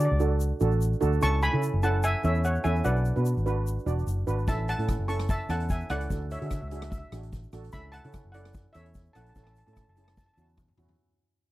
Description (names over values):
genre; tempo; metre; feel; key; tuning
calypso; 147 BPM; 4/4; swing 54% on 16ths; A major; A4 = 439 Hz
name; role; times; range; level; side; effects
steel pan; melody; 0.0-10.5 s; C#5 to C#6; -31 LUFS; equal; none
steel pan; accompaniment; 0.0-10.9 s; C#4 to D5; -32 LUFS; right 5 dB; none
vintage muted fingered electric bass; bass; 0.0-10.9 s; E1 to D3; -27 LUFS; equal; none
egg shaker; percussion; 0.2-10.9 s; none; -48 LUFS; left 9 dB; none
street-band drum kit; drums; 4.5-11.0 s; hi-hat, kick drum, rim click, snare drum, toms; -34 LUFS; equal; none
room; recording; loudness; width
little or no reverb; dry, close 1970s-style studio recording; -24 LUFS; side -16 dB against mid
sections
0.0-11.0 A section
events
fade-out 0.0-11.0; drum fill 10.2-11.0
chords
0.0 D; 1.2 A; 2.9 Bm; 4.5 A; 6.1 D; 7.7 A